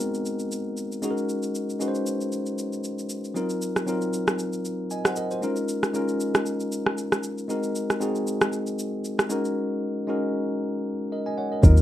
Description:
amapiano; 116 BPM; 4/4; swing 55% on 16ths; A4 = 441 Hz
bell-like tine electric piano; accompaniment; 0.0-11.8 s; Gb3 to Ab5; -26 LUFS; left 1 dB
smooth R&B drum kit; drums; 0.0-11.8 s; kick drum, rim click, shaker; -24 LUFS; right 1 dB
deep log drum bass; bass; 11.6-11.8 s; Eb2; -13 LUFS; equal
moderate small room reverb, RT60 0.5 s; rough home demo mix; -24 LUFS; side -13 dB against mid
0.0-11.6 A section
kick muted 1.3-3.4
0.0 Ab9; 1.0 Gb69; 3.4 Ebm69; 5.4 Db69; 7.5 Ab9; 9.3 Gb69

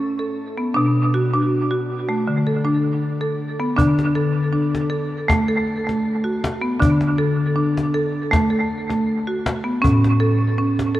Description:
world meditative, meditative tuned percussion; 79 BPM; 4/4; straight; D major; A4 = 440 Hz
marimba with hard mallets; arpeggios; 0.0-11.0 s; A2 to A4; -18 LUFS; equal; diffuse ambient delay, shimmer reverb
cajon; percussion; 3.8-11.0 s; -24 LUFS; left 1 dB
wet church reverb, RT60 3.6 s; worn, warbling old tape, cassette tape, warbly pitch drift; -17 LUFS; side -14 dB against mid
0.0-3.8 A section; 3.8-11.0 B section
0.0 N.C.; 0.8 Bm; 2.3 D5; 3.8 D; 9.8 A

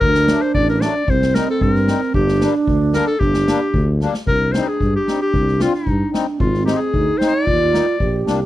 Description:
klezmer; 113 BPM; 2/4; straight; G harmonic minor, C minor from 4.3 s; A4 = 442 Hz
bright clarinet; melody; 0.0-8.2 s; Eb4 to D5; -20 LUFS; left 3 dB
mellow hollow wooden-headed alto flute; second line; 0.0-8.5 s; C4 to G4; -21 LUFS; right 5 dB
mellow tuba; bass; 0.0-8.5 s; G1 to G2; -20 LUFS; equal
street-band drum kit; drums; 0.0-8.4 s; kick drum, snare drum; -23 LUFS; equal
accordion; accompaniment; 0.3-8.4 s; F#3 to F4; -24 LUFS; left 6 dB; light tremolo tuning
small room ambience; dry, close 1970s-style studio recording; -15 LUFS; side -14 dB against mid
0.0-4.3 A section; 4.3-8.5 B section
drum fill 4.0
0.0 D; 1.1 Cm; 2.1 Gm; 4.3 Cm; 6.4 Ab; 7.5 Eb

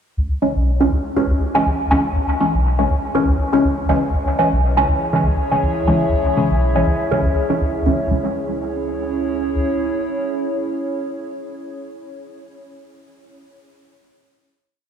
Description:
dub techno; 121 BPM; 4/4; swing 55% on 16ths; C# minor; A4 = 440 Hz
soft dub sub bass; bass; 0.2-9.6 s; B1 to C#2; -20 LUFS; equal
filtered dub chord stab; stabs; 0.4-12.0 s; C#3 to C#4; -18 LUFS; equal; phaser, dub echo
warbly tape-like pad; sustained chords; 4.9-12.0 s; C#4 to E5; -23 LUFS; equal; chorus, built-in reverb, phaser
moderate huge ambient reverb, RT60 8.2 s; played on a big sound system in a bare room, large studio reverb; -16 LUFS; side -8 dB against mid
0.2-8.1 groove; 8.1-12.1 final chord
0.2 C#m

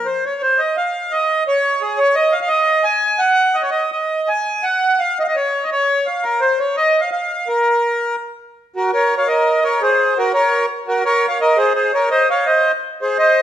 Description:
musette; 170 BPM; 3/4; rubato; Bb minor; A4 = 444 Hz
accordion; solo; 0.0-13.4 s; Gb4 to Ab5; -14 LUFS; right 1 dB
moderate recital hall reverb, RT60 1.4 s; -14 LUFS; side -11 dB against mid
0.1-8.6 A section; 8.6-13.4 B section
0.0 N.C.; 8.6 Bbm; 9.6 Gb; 10.7 Gbadd9(#11); 11.7 Dbmaj7(no3)

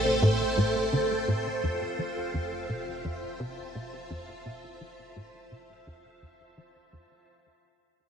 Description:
ambient; 85 BPM; 4/4; straight; A4 = 440 Hz
string machine, full ensemble; sustained chords; 0.0-7.3 s; A3 to A5; -29 LUFS; right 1 dB; ensemble chorus
tight sequencer bass; riff; 0.0-7.1 s; F2 to F3; -29 LUFS; equal; ensemble chorus, ping-pong delay
warm sub bass; bass; 0.0-7.2 s; F1 to A1; -44 LUFS; equal
wet lush hall reverb, RT60 2.7 s; -27 LUFS; side -7 dB against mid
0.0-7.3 A section
fade-out on sub bass 0.0-7.3; fade-out 0.0-7.3; filter sweep on analog synth bass 0.0-7.3
0.0 Am7; 1.6 Fmaj7

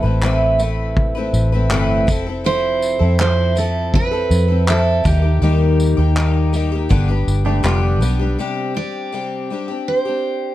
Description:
acoustic pop; 81 BPM; 4/4; straight; C major; A4 = 440 Hz
picked steel-string acoustic guitar; melody; 0.0-10.5 s; G4 to D5; -22 LUFS; right 4 dB
picked twelve-string acoustic guitar; accompaniment; 0.0-10.5 s; G2 to B4; -20 LUFS; left 2 dB
vintage muted fingered electric bass; bass; 0.0-8.4 s; F1 to F2; -17 LUFS; equal
vintage brush drum kit; drums; 0.2-8.2 s; handclaps, kick drum, tambourine; -21 LUFS; equal
pedal steel guitar; second line; 7.5-8.4 s; A3 to G4; -25 LUFS; right 5 dB
light reverb; dark, warm production; -15 LUFS; side -14 dB against mid
0.0-8.4 A section; 8.4-10.5 B section
0.0 Amadd9; 2.1 Fmaj7; 5.0 Eb; 6.9 G; 8.4 Csus2

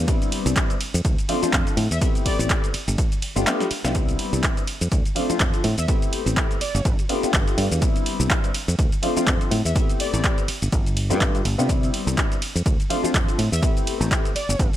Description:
filtered disco house; 124 BPM; 4/4; swing 57% on 16ths; A4 = 435 Hz
clear grand piano; accompaniment; 0.0-14.3 s; F3 to G4; -26 LUFS; left 2 dB; phaser, sidechain pumping
fingered electric bass; bass; 0.0-14.7 s; G1 to C3; -23 LUFS; equal; sidechain pumping
electronic kick drum; drums; 0.1-14.7 s; -22 LUFS; equal
punchy analog drum machine; drums; 0.1-14.8 s; handclaps, hi-hat, ride cymbal, shaker, snare drum; -27 LUFS; equal; sidechain pumping on hats, sidechain pumping on cymbals, sidechain pumping on perc
analog synth brass; melody; 1.9-2.6, 5.8-10.4, 13.5-14.7 s; D5 to E5; -32 LUFS; left 1 dB; chorus, sidechain pumping
little or no reverb; -19 LUFS; side -12 dB against mid
0.0-14.8 A section
kick drops out 3.5-4.0; drum fill 3.5-4.0
0.1 Cmaj9; 0.8 F6; 1.8 Am9; 3.0 G9; 4.0 Cmaj9; 4.7 F6; 5.6 Am9; 6.9 G9; 7.8 Cmaj9; 8.5 F6; 9.5 Am9; 10.7 G9; 11.7 Cmaj9; 12.4 F6; 13.4 Am9

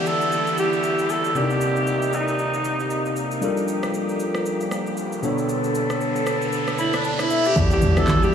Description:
amapiano; 116 BPM; 4/4; swing 58% on 16ths; A4 = 438 Hz
growling alto saxophone; melody; 0.0-3.2, 6.8-8.3 s; D4 to A4; -24 LUFS; right 1 dB; analog delay
tine electric piano; accompaniment; 0.0-8.3 s; B2 to B5; -24 LUFS; left 2 dB; wide subtle chorus
warm brass ensemble; sustained chords; 0.0-8.3 s; C3 to A4; -28 LUFS; right 1 dB; sidechain pumping
downlifter, riser and impact; sound effects; 0.0-8.3 s; -30 LUFS; right 1 dB
deep house drum kit; drums; 0.1-8.3 s; handclaps, kick drum, rim click, shaker; -31 LUFS; right 1 dB; overdrive
deep log drum bass; bass; 7.6-8.3 s; E2; -22 LUFS; equal
congas; percussion; 7.8-8.3 s; -28 LUFS; right 4 dB
wet huge ambient reverb, RT60 7.8 s; dreamy mix soaked in reverb, studio reverb; -20 LUFS; side -8 dB against mid
0.0-7.6 A section
riser 3.4-7.6; tine electric piano fill 6.5-7.6; impact 7.6-8.3
0.0 Em7; 1.4 Cm7; 3.4 Gm7; 5.2 Bm7; 7.6 Em7

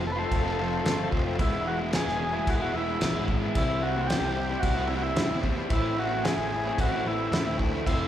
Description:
psychedelic rock; 111 BPM; 4/4; straight; A4 = 440 Hz
string machine, full ensemble; sustained chords; 0.0-8.1 s; A3 to C6; -40 LUFS; right 2 dB
raw garage guitar; riff; 0.0-8.1 s; E2 to F4; -30 LUFS; left 1 dB; overdrive
fuzz picked electric bass; bass; 0.0-8.1 s; E1 to G2; -33 LUFS; equal; overdrive
congas; percussion; 0.0-7.7 s; -44 LUFS; left 3 dB
combo organ; melody; 0.1-8.1 s; E4 to B4; -30 LUFS; equal
cloth-damped thuddy drum kit; drums; 0.3-8.0 s; crash cymbal, kick drum, snare drum; -30 LUFS; equal
moderate large studio reverb, RT60 1.2 s; band playing live in one room; -24 LUFS; side -11 dB against mid
0.0-8.1 A section
0.0 F; 1.4 E; 3.5 C; 5.7 Amadd9

